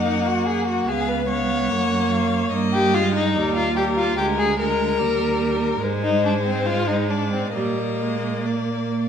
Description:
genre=quick classical-period movement for string quartet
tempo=144 BPM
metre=4/4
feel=rubato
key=Eb major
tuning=A4 = 436 Hz
part: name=warm violin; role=melody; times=0.0-9.1 s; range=Bb4 to Gb5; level=-28 LUFS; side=left 8 dB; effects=none
part: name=rich violin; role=second line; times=0.0-9.1 s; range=Bb3 to Db5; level=-23 LUFS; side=left 3 dB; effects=none
part: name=clear viola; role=accompaniment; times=0.0-9.1 s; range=G3 to Cb4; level=-25 LUFS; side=right 2 dB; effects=none
part: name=dark cello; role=bass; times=0.0-9.1 s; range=Db2 to Bb2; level=-25 LUFS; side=right 5 dB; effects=none
room=wet recital hall reverb, RT60 1.5 s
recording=none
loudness=-19 LUFS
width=side -8 dB against mid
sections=0.0-9.1 A section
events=none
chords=0.0 Gb; 0.9 Db7; 1.7 Gb; 2.5 Eb/G; 3.4 Eb; 4.2 Bb7/D; 5.0 Eb; 5.8 Ab; 7.6 Eb/Bb; 8.5 Bb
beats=0.05 0.46 | 0.87 1.28 1.70 2.11 | 2.52 2.94 3.35 3.76 | 4.17 4.59 5.00 5.41 | 5.83 6.25 6.67 7.11 | 7.55 8.01 8.47 8.91

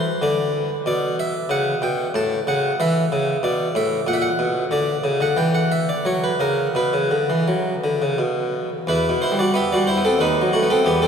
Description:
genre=classical, baroque-style suite movement for harpsichord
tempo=83-95 BPM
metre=3/4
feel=rubato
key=B minor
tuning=A4 = 440 Hz
part: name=harpsichord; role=solo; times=0.0-11.1 s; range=D#2 to A5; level=-18 LUFS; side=equal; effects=none
room=wet cathedral reverb, RT60 6.5 s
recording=recorded in a church or concert hall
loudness=-18 LUFS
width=side -7 dB against mid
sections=0.0-8.9 A section; 8.9-11.1 A section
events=none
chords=0.0 N.C.; 0.9 Bmadd9; 2.1 F#m/A; 2.8 E5; 4.1 F#/A#; 4.7 Dmaj7; 5.4 N.C.; 6.1 F#; 6.8 Bm; 8.9 Em; 10.2 B/D#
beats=0.22 | 0.86 1.50 2.15 | 2.79 3.43 4.07 | 4.72 5.37 6.05 | 6.76 7.48 8.19 | 8.88 9.54 10.20 | 10.85

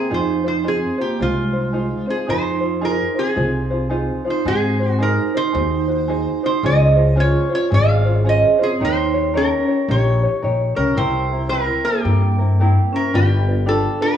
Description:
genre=Hawaiian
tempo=110 BPM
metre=4/4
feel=swing 63% on 8ths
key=F minor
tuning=A4 = 440 Hz
part: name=lap resonator guitar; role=melody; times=0.0-14.2 s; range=F4 to F5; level=-21 LUFS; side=right 2 dB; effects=none
part: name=vibraphone with medium mallets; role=second line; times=0.0-14.2 s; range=Ab3 to Ab4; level=-23 LUFS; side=right 4 dB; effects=none
part: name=tenor ukulele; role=accompaniment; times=0.0-14.2 s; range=C4 to Db5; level=-23 LUFS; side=left 2 dB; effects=none
part: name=upright bass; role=bass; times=0.1-13.8 s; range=G1 to Ab2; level=-19 LUFS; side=equal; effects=transformer saturation
room=moderate recital hall reverb, RT60 1.6 s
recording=worn, warbling old tape, cassette tape, warbly pitch drift, small room ambience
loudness=-16 LUFS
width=side -9 dB against mid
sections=0.0-2.3 A section; 2.3-14.2 A section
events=none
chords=0.1 Fm7; 4.5 Ab7; 6.6 Dbmaj7; 8.8 Eb7; 11.0 C7; 13.1 G7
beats=| 0.11 0.65 1.20 1.74 | 2.29 2.83 3.37 3.92 | 4.46 5.00 5.54 6.09 | 6.63 7.17 7.72 8.26 | 8.80 9.35 9.89 10.43 | 10.97 11.52 12.06 12.60 | 13.14 13.69

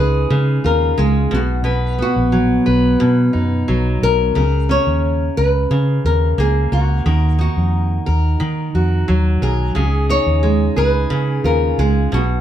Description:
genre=acoustic pop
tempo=89 BPM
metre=4/4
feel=straight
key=Db mixolydian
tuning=A4 = 440 Hz
part: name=flamenco guitar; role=melody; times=0.0-12.4 s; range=Gb4 to Db5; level=-20 LUFS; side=left 2 dB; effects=none
part: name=fingerpicked steel-string acoustic guitar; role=accompaniment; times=0.0-12.4 s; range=Cb3 to Cb5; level=-19 LUFS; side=right 1 dB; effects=none
part: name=vintage muted fingered electric bass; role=bass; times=0.0-12.4 s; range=Bb1 to Eb3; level=-17 LUFS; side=equal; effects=none
room=moderate studio reverb, RT60 0.7 s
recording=band playing live in one room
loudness=-14 LUFS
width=side -11 dB against mid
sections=0.0-12.4 A section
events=none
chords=0.0 Dbadd9; 1.3 Cb; 4.4 Bbm/Db; 7.1 Ebm; 9.8 Dbadd9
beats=0.30 0.97 | 1.65 2.33 3.00 3.68 | 4.36 5.03 5.71 6.38 | 7.06 7.73 8.41 9.09 | 9.76 10.44 11.11 11.78

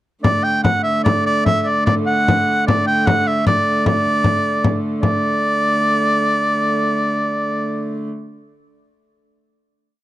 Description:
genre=medieval dance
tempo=98-109 BPM (dotted quarters)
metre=6/8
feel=straight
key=D major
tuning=A4 = 438 Hz
part: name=edgy shawm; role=melody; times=0.2-8.0 s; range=D5 to G5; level=-17 LUFS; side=right 1 dB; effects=none
part: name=dark hurdy-gurdy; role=drone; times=0.2-8.1 s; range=D3 to A3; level=-21 LUFS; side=equal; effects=none
part: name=frame drum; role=percussion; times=0.2-5.2 s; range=none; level=-18 LUFS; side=left 2 dB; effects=none
room=small room ambience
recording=dry, close 1970s-style studio recording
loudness=-15 LUFS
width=side -14 dB against mid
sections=0.2-5.0 A section; 5.0-7.3 final chord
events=speeding up 0.2-7.3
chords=none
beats=| 0.25 0.86 | 1.47 2.07 | 2.68 3.27 | 3.87 4.46 | 5.04 5.61 | 6.18 6.74

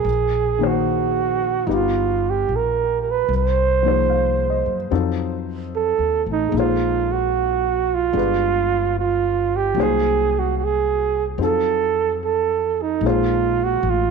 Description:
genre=jazz ballad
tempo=74 BPM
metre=4/4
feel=swing 68% on 8ths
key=unclear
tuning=A4 = 441 Hz
part: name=breathy flugelhorn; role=melody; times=0.0-14.1 s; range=Eb4 to C5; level=-19 LUFS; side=right 10 dB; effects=tape echo
part: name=warm baby grand piano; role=accompaniment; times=0.0-14.1 s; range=Eb3 to F5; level=-25 LUFS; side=left 15 dB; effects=none
part: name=upright bass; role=bass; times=0.0-14.1 s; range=G1 to Gb2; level=-25 LUFS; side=left 3 dB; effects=none
room=light reverb, small room ambience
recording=1960s-style stereo with parts hard left and right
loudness=-18 LUFS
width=side -5 dB against mid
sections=0.0-13.0 A section; 13.0-14.1 A section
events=none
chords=0.0 Bb9sus4; 1.7 G7alt; 3.3 Cm7b5; 4.9 F7b9; 6.5 Bbsus2; 8.1 G7b9; 9.8 Cm7b5; 11.4 F7b9; 13.0 Bb7sus2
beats=| 0.04 0.85 1.66 2.48 | 3.29 4.10 4.91 5.71 | 6.53 7.33 8.14 8.95 | 9.76 10.57 11.38 12.20 | 13.02 13.83

